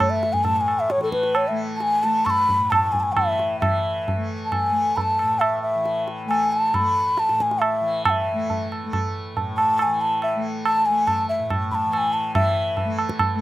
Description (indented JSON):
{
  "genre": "indian classical, Hindustani",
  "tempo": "137 BPM",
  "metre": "5/4",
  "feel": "uneven beats",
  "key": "unclear",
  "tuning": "A4 = 441 Hz",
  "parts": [
    { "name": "breathy mellow bansuri", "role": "melody", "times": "0.0-12.9 s", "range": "A4 to C#6", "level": "-20 LUFS", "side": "left 1 dB", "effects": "none" },
    { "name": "tanpura", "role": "drone", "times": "0.0-13.4 s", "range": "A2 to A3", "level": "-29 LUFS", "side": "left 1 dB", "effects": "none" },
    { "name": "tabla", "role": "percussion", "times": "0.0-13.4 s", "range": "none", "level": "-24 LUFS", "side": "right 3 dB", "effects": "slapback echo" }
  ],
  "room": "little or no reverb",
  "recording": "recorded outdoors, with no room sound",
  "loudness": "-19 LUFS",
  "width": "side -15 dB against mid",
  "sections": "0.0-3.6 A section; 3.6-12.4 B section; 12.4-13.4 C section",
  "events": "speeding up 0.0-13.4",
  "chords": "none",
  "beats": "0.00 0.46 0.92 | 1.37 1.83 2.28 2.73 3.18 | 3.63 4.08 4.53 4.97 5.42 | 5.86 6.30 6.74 7.18 7.62 | 8.05 8.49 8.92 9.36 9.79 | 10.22 10.65 11.07 11.50 11.93 | 12.35 12.77 13.20"
}